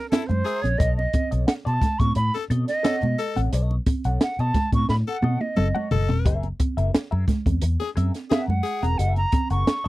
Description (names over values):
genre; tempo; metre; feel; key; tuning
funk; 88 BPM; 4/4; straight; unclear; A4 = 440 Hz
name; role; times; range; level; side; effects
reedy concert flute; melody; 0.0-9.9 s; A4 to C#6; -27 LUFS; right 2 dB; none
raspy tenor saxophone; second line; 0.1-8.9 s; E4 to A4; -29 LUFS; left 8 dB; none
compact cocktail drum kit; drums; 0.1-9.9 s; hi-hat, kick drum, snare drum, toms; -23 LUFS; equal; none
congas; percussion; 0.1-9.9 s; none; -30 LUFS; right 5 dB; none
clean electric guitar; accompaniment; 0.3-9.9 s; G#4 to F#5; -32 LUFS; left 5 dB; wah, lush chorus
vintage muted fingered electric bass; bass; 0.3-9.9 s; E1 to B2; -22 LUFS; equal; none
room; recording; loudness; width
little or no reverb; dry, close 1970s-style studio recording; -20 LUFS; side -18 dB against mid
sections
0.0-9.9 A section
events
flute solo 0.0-9.9; drum fill 4.9-6.3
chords
0.0 F#9; 0.8 B9; 6.3 F#9